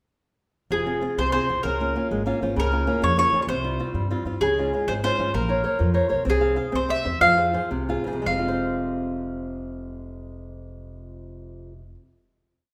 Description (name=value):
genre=italian folk, Italian serenade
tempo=107-131 BPM (dotted quarters)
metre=6/8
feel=straight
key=F minor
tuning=A4 = 438 Hz
part: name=mandolin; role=melody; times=0.7-11.9 s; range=Ab4 to F5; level=-25 LUFS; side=equal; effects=none
part: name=flamenco guitar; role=accompaniment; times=0.7-12.1 s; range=F2 to F5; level=-29 LUFS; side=equal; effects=none
part: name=upright bass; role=bass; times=0.7-11.9 s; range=F1 to G2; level=-31 LUFS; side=equal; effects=none
room=wet recital hall reverb, RT60 1.3 s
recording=none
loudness=-23 LUFS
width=mono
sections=0.7-8.3 A section; 8.3-10.5 final chord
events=nylon-string guitar fill 2.1-2.6, 7.7-8.3; slowing down 6.3-8.3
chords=0.7 Fm; 1.6 Db6; 2.6 Bbm/Db; 3.5 Csus4; 4.4 Db; 5.3 Bbmadd9; 6.3 Fm/C; 6.7 C; 7.2 Fm